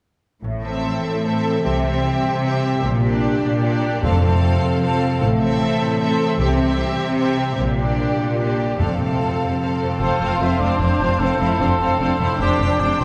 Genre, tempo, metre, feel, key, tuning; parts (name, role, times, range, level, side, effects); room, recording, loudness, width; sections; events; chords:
cinematic; 100 BPM (dotted quarters); 6/8; straight; F major; A4 = 442 Hz
concert harp; arpeggios; 0.4-13.0 s; F2 to D5; -28 LUFS; equal
rich symphonic cello section; bass; 0.4-13.0 s; F2 to C3; -26 LUFS; equal
rich symphonic double bass section; bass; 0.4-13.0 s; F1 to C2; -26 LUFS; equal
warm symphonic violin section; melody; 0.6-13.0 s; D5 to G5; -32 LUFS; equal
warm symphonic violin section; second line; 0.6-13.0 s; C4 to A4; -28 LUFS; equal
rich symphonic viola section; accompaniment; 0.6-13.0 s; C4 to C5; -27 LUFS; equal
timpani; percussion; 4.0-9.4 s; F2 to C3; -28 LUFS; equal
mellow cor anglais; second line; 10.0-13.0 s; G4 to E5; -25 LUFS; equal
wet concert hall reverb, RT60 2.1 s; heard from further back in the room; -19 LUFS; mono
0.4-10.0 A section; 10.0-13.0 B section
build-up 0.4-10.0
0.4 Am; 1.6 C; 2.8 Gm/Bb; 4.0 F; 5.2 Am; 6.4 C; 7.6 Gm/Bb; 8.8 F; 12.4 Csus2/F